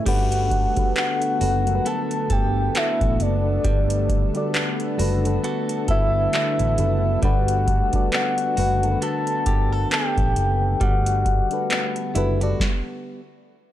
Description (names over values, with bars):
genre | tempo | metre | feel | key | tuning
contemporary R&B | 67 BPM | 4/4 | swing 58% on 16ths | G major | A4 = 442 Hz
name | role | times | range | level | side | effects
soft octave-layered synth lead | melody | 0.0-12.2 s | D5 to A5 | -24 LUFS | left 2 dB | chorus, tremolo, tape echo
mellow FM electric piano | accompaniment | 0.0-12.6 s | F#3 to D5 | -30 LUFS | left 2 dB | chorus
lush unison pad | sustained chords | 0.0-12.6 s | D3 to A4 | -29 LUFS | left 1 dB | chorus
direct-recorded clean electric guitar | arpeggios | 0.0-13.2 s | G3 to B4 | -31 LUFS | right 3 dB | tape echo
vintage muted fingered electric bass | bass | 0.1-12.5 s | F#1 to A1 | -23 LUFS | equal | none
booming analog drum machine | drums | 0.1-12.8 s | crash cymbal, handclaps, hi-hat, kick drum, snare drum | -23 LUFS | equal | none
room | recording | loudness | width
little or no reverb | dry, gritty hardware recording, transformer saturation | -19 LUFS | side -12 dB against mid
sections
0.1-13.7 A section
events
stop 12.6-13.7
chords
0.1 Gmaj9